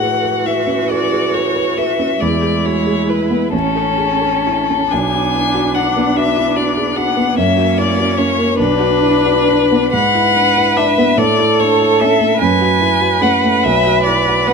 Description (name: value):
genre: classical, slow romantic movement for piano quartet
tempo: 42-50 BPM (dotted quarters)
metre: 6/8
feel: rubato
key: A major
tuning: A4 = 440 Hz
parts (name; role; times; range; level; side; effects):
- rich violin; melody; 0.0-14.5 s; A4 to G#5; -16 LUFS; left 8 dB; none
- rich cello; second line; 0.0-14.5 s; B3 to B4; -18 LUFS; right 6 dB; none
- rich viola; accompaniment; 0.0-14.5 s; E3 to D4; -21 LUFS; right 2 dB; none
- warm grand piano; accompaniment; 0.0-14.5 s; A1 to B4; -18 LUFS; right 1 dB; none
room: moderate stone room reverb, RT60 1.3 s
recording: minimal, uncompressed stereo recording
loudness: -12 LUFS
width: side -5 dB against mid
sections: 0.0-14.5 A section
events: none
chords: 0.0 A; 2.2 E; 3.5 A; 4.9 Bm; 7.4 F#7; 8.6 Bm; 9.9 E7/G#; 11.2 A; 12.4 F#m; 13.6 Bm